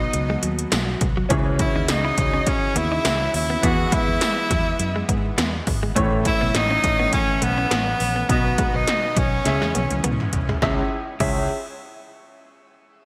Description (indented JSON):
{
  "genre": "1980s-style pop",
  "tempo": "103 BPM",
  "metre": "4/4",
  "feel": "swing 55% on 16ths",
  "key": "C# minor",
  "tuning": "A4 = 437 Hz",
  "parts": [
    { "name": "clear tenor saxophone", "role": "melody", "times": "0.0-10.0 s", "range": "B3 to F#4", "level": "-26 LUFS", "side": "equal", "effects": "none" },
    { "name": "dark studio violin section", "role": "second line", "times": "0.0-10.0 s", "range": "B4 to F#5", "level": "-36 LUFS", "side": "equal", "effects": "none" },
    { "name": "clear grand piano", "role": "accompaniment", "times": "0.0-11.5 s", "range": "C#2 to E5", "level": "-30 LUFS", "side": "equal", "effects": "analog chorus, shimmer reverb" },
    { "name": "phased analog pad", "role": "sustained chords", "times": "0.0-10.9 s", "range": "C#3 to G#5", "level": "-34 LUFS", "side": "equal", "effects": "none" },
    { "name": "vintage muted fingered electric bass", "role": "bass", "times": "0.0-11.5 s", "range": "G#1 to G#2", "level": "-28 LUFS", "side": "equal", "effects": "none" },
    { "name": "direct-recorded clean electric guitar", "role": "riff", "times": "0.1-11.4 s", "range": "F#3 to E4", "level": "-33 LUFS", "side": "equal", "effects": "none" },
    { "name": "80s electronic pad drums", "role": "drums", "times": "0.1-11.4 s", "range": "crash cymbal, hi-hat, kick drum, snare drum, tambourine, toms", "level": "-26 LUFS", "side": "equal", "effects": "gated reverb on snare and toms" }
  ],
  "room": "moderate lush hall reverb, RT60 1.8 s, digital ambience",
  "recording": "bright 1980s-style digital production",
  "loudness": "-21 LUFS",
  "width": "mono",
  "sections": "0.0-10.6 A section; 10.6-13.0 B section",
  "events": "drum fill 9.5-10.6",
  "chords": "0.0 B; 1.3 C#madd9; 3.6 E; 6.0 A; 8.3 B; 9.5 C#m"
}